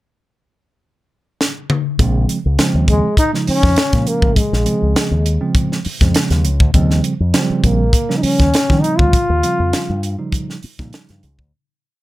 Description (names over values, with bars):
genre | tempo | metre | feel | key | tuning
funk | 101 BPM | 4/4 | straight | Bb dorian | A4 = 441 Hz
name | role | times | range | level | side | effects
crisp fusion drum kit | drums | 1.4-11.5 s | hi-hat, kick drum, snare drum, toms | -17 LUFS | equal | none
mellow tine electric piano | stabs | 2.0-11.3 s | C3 to Eb4 | -20 LUFS | right 3 dB | none
fingered electric bass with an envelope filter | bass | 2.0-11.5 s | A1 to Eb3 | -17 LUFS | equal | none
breathy trombone | melody | 2.9-10.2 s | Ab3 to F4 | -18 LUFS | left 1 dB | plate reverb
room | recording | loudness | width
little or no reverb | none | -13 LUFS | side -17 dB against mid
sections
0.0-2.0 pickup bar; 2.0-11.5 groove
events
drum fill 1.4-2.0; fade-out 9.1-11.5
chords
0.0 N.C.; 2.0 Bbm7 (rootless); 6.7 Eb13